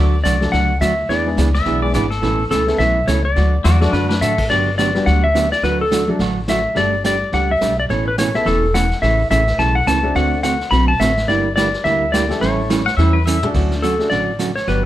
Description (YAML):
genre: country, western swing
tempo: 212 BPM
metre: 4/4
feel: swing 60% on 8ths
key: D major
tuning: A4 = 436 Hz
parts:
  - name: pedal steel guitar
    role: second line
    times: 0.0-4.4, 12.9-13.5 s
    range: D4 to F#5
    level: -22 LUFS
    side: left 3 dB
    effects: none
  - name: archtop guitar, miked and amplified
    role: accompaniment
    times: 0.0-14.9 s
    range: B2 to A4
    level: -21 LUFS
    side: right 5 dB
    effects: none
  - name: upright bass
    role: bass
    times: 0.0-14.9 s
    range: E1 to A2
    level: -19 LUFS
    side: equal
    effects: none
  - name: clean lap steel guitar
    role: melody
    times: 0.2-14.8 s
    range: A4 to B5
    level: -18 LUFS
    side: left 2 dB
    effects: none
  - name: vintage brush drum kit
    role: drums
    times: 0.2-14.9 s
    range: brushed snare drum, crash cymbal, hi-hat, kick drum, ride cymbal, snare drum, toms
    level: -25 LUFS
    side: equal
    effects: none
  - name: clear upright piano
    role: accompaniment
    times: 0.4-14.1 s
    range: F#3 to A4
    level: -23 LUFS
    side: left 2 dB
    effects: none
room: moderate studio reverb, RT60 0.7 s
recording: none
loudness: -14 LUFS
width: side -13 dB against mid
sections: 0.0-4.5 A section; 4.5-13.5 B section; 13.5-14.9 A section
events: drum fill 3.9, 13.3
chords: 0.0 D; 1.1 E7; 2.2 Aadd9; 3.4 D; 4.5 Gmaj7; 5.6 D; 6.8 Gsus2; 7.9 Aadd9; 9.0 A; 10.2 D7; 11.3 Gm6; 12.4 A7; 13.5 Dmaj7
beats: 0.24 0.53 0.81 | 1.09 1.38 1.66 1.95 | 2.23 2.51 2.80 3.08 | 3.36 3.65 3.93 4.21 | 4.50 4.78 5.06 5.35 | 5.63 5.91 6.20 6.48 | 6.76 7.04 7.33 7.61 | 7.89 8.18 8.46 8.74 | 9.02 9.31 9.59 9.87 | 10.15 10.44 10.72 11.00 | 11.28 11.57 11.85 12.13 | 12.41 12.70 12.98 13.26 | 13.54 13.83 14.11 14.39 | 14.68